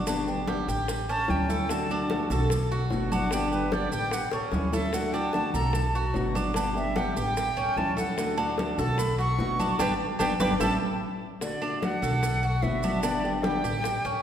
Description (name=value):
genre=latin, Cuban son and guajira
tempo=148 BPM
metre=4/4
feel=straight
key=D major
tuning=A4 = 444 Hz
part: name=nylon-string guitar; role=accompaniment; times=0.0-13.9 s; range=B2 to G4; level=-32 LUFS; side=left 2 dB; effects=none
part: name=Cuban tres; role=arpeggios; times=0.0-14.2 s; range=C#4 to B4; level=-31 LUFS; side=right 2 dB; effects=none
part: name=upright bass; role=bass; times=0.0-14.2 s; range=G1 to D2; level=-31 LUFS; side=equal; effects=none
part: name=bongos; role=percussion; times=0.1-14.0 s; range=none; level=-36 LUFS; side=left 3 dB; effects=none
part: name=congas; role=percussion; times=0.1-14.2 s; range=none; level=-34 LUFS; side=equal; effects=none
part: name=maracas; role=percussion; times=0.1-14.2 s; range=none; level=-42 LUFS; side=right 6 dB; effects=none
part: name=silver concert flute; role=melody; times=1.1-14.2 s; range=A4 to C#6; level=-31 LUFS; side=equal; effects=none
room=wet concert hall reverb, RT60 2.1 s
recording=recorded in a church or concert hall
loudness=-24 LUFS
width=side -9 dB against mid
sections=0.0-11.4 A section; 11.4-14.2 B section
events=flute solo 0.0-11.4; drum fill 4.3-4.9, 11.0-11.4; band accent 9.8-11.4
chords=0.1 G; 0.9 A7; 1.7 D; 2.5 Bm7; 3.3 G; 4.1 A7; 4.9 D; 5.7 Bm7; 6.6 G; 7.4 A7; 8.2 D; 9.0 Bm7; 9.8 G; 10.6 A7; 11.4 D; 12.2 Bm7; 13.0 G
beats=| 0.08 0.48 0.89 1.29 | 1.70 2.10 2.51 2.91 | 3.31 3.72 4.12 4.53 | 4.93 5.34 5.74 6.15 | 6.55 6.96 7.36 7.77 | 8.18 8.58 8.98 9.39 | 9.79 10.20 10.61 11.01 | 11.42 11.82 12.22 12.63 | 13.04 13.44 13.85